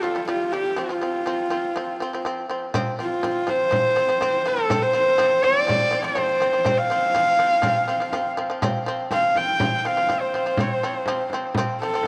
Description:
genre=mongolian traditional, Mongolian folk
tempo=122 BPM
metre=4/4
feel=straight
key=F gong mode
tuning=A4 = 439 Hz
part: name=rich horsehead fiddle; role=melody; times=0.0-12.1 s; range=F4 to G5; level=-23 LUFS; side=equal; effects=tape echo
part: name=shamisen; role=arpeggios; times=0.0-12.0 s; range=C3 to C4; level=-30 LUFS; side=equal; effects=none
part: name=frame drum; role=percussion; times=2.7-12.1 s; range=none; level=-31 LUFS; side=equal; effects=none
room=moderate plate reverb, RT60 2.8 s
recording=none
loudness=-22 LUFS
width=mono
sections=0.0-2.7 A section; 2.7-12.1 B section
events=none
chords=0.0 C5; 0.8 F5

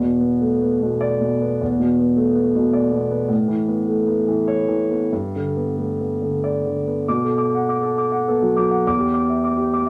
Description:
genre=neoclassical minimalist piano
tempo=90-107 BPM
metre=3/4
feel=rubato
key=E minor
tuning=A4 = 435 Hz
part: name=warm concert grand piano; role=solo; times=0.0-9.9 s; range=E2 to D6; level=-20 LUFS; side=equal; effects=none
room=wet studio reverb, RT60 0.6 s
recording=none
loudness=-20 LUFS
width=mono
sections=0.0-7.1 A section; 7.1-9.9 B section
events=none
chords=0.0 E5; 3.3 Aadd9; 5.1 G; 7.1 Bm7; 8.8 Em7

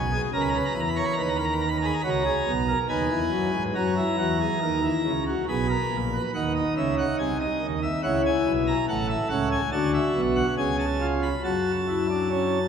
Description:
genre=classical, baroque-style 3-part fugue for pipe organ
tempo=70 BPM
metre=3/4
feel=straight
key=F# minor from 8.9 s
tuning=A4 = 440 Hz
part: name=pipe organ, principal chorus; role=solo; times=0.0-12.7 s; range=A1 to B5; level=-22 LUFS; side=equal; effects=none
room=wet church reverb, RT60 3.3 s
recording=none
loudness=-22 LUFS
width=side -7 dB against mid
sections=0.0-3.8 A section; 3.8-12.7 B section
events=none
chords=0.3 C#m7; 1.2 G#m/D#; 3.8 F#7; 5.5 G#madd9; 6.3 G#7; 8.0 C#m; 8.9 A; 9.7 D; 10.6 C#7; 11.4 F#m

